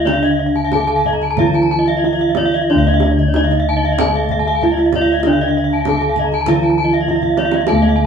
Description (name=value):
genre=Balinese gamelan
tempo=91-102 BPM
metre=4/4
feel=straight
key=D pelog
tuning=A4 = 440 Hz
part: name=gamelan-type bronze metallophone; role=melody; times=0.0-8.1 s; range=D4 to A4-45c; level=-18 LUFS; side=right 1 dB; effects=none
part: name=gamelan-type bronze metallophone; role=accompaniment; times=0.0-8.1 s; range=D3 to A3-45c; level=-25 LUFS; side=right 1 dB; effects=none
part: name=gamelan-type bronze metallophone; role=arpeggios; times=0.0-7.9 s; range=D5 to Bb5-40c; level=-19 LUFS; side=left 3 dB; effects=none
part: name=gamelan-type bossed gongs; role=bass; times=0.0-8.1 s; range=D2 to A4-45c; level=-19 LUFS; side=left 1 dB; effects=none
part: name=gamelan-type bronze metallophone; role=arpeggios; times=0.1-8.0 s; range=D5 to Bb5-40c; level=-22 LUFS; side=right 6 dB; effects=none
part: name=kendang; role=percussion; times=0.1-7.9 s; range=none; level=-24 LUFS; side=right 4 dB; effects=none
room=moderate studio reverb, RT60 0.5 s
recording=band playing live in one room, studio ambience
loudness=-13 LUFS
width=side -7 dB against mid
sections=0.0-7.7 A section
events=drum fill 7.1-7.7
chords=none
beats=| 0.06 0.72 1.38 2.04 | 2.70 3.35 4.00 4.63 | 5.26 5.88 6.49 7.09 | 7.68